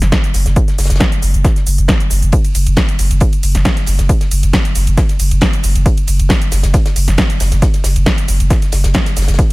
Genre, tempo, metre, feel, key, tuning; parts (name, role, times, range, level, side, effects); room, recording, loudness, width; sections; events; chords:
driving peak-time techno; 136 BPM; 4/4; straight; A4 = 440 Hz
saturated sub bass; bass; 0.0-9.4 s; F#1; -14 LUFS; equal; overdrive, sidechain pumping, low-pass filter
techno drum kit; drums; 0.0-9.5 s; hi-hat, ride cymbal, shaker, snare drum; -19 LUFS; equal; sidechain pumping on hats, sidechain pumping on perc, sidechain pumping on cymbals
electronic kick drum; drums; 0.1-9.5 s; -14 LUFS; equal
warm soul drum kit; drums; 0.1-9.5 s; hi-hat, snare drum; -30 LUFS; left 2 dB; high-pass filter on hats, high-pass filter on snare, high-pass filter on room, tape echo
studio reverb; echo-heavy mix; -11 LUFS; side -22 dB against mid
0.0-9.5 A section